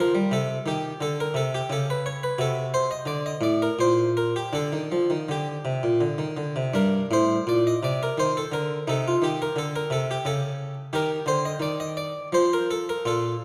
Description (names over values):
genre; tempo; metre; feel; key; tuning
classical, baroque-style suite movement for harpsichord; 77-90 BPM; 3/4; rubato; G minor; A4 = 440 Hz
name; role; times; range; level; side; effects
harpsichord; solo; 0.0-13.4 s; G2 to Eb5; -25 LUFS; equal; none
room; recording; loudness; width
moderate concert hall reverb, RT60 1.8 s; none; -25 LUFS; mono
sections
0.0-13.4 A section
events
none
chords
0.3 Cm69; 1.7 N.C.; 2.4 D7/C; 3.8 N.C.; 4.5 G5/D; 6.0 Cmadd9; 6.8 Gm (rootless); 8.9 Cm13; 10.2 N.C.; 10.9 Eb; 12.3 N.C.